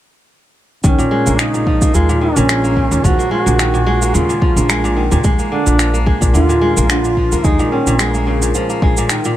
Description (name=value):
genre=organic downtempo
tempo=109 BPM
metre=4/4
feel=swing 54% on 16ths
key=Eb minor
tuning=A4 = 439 Hz
part: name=mellow duduk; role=melody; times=0.8-8.2 s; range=Db4 to Gb4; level=-18 LUFS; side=right 1 dB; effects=tape echo
part: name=kora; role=arpeggios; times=0.8-9.4 s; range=Bb2 to Bb3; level=-17 LUFS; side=equal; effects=tape echo
part: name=upright bass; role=bass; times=0.8-8.9 s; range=Bb1 to Eb2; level=-17 LUFS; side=equal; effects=none
part: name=electronic cabasa and finger snaps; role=drums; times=0.8-9.3 s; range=none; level=-21 LUFS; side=right 1 dB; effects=none
part: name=electronic kick drum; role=drums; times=0.8-8.9 s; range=none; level=-15 LUFS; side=equal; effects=none
room=light reverb, studio ambience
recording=none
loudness=-12 LUFS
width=side -13 dB against mid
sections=0.8-9.4 A section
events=none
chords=0.8 Ebm11; 5.2 Bb7; 7.4 Eb9sus4